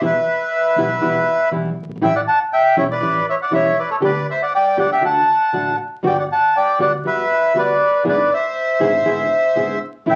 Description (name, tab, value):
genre	tango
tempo	120 BPM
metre	4/4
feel	rubato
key	unclear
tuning	A4 = 439 Hz
part	bandoneon	melody	0.0-10.2 s	A4 to A5	-18 LUFS	equal	none
part	nylon-string guitar	accompaniment	0.0-10.2 s	B2 to G#4	-24 LUFS	equal	none
part	upright bass	bass	0.0-10.2 s	E1 to E2	-34 LUFS	equal	none
room	wet small room reverb, RT60 0.6 s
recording	very old 78 rpm record, vinyl crackle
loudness	-17 LUFS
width	mono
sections	0.0-10.2 A section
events	none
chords	0.0 Em; 2.0 A7; 4.0 G/D; 5.0 D; 6.0 Gmaj7; 8.1 E7/G#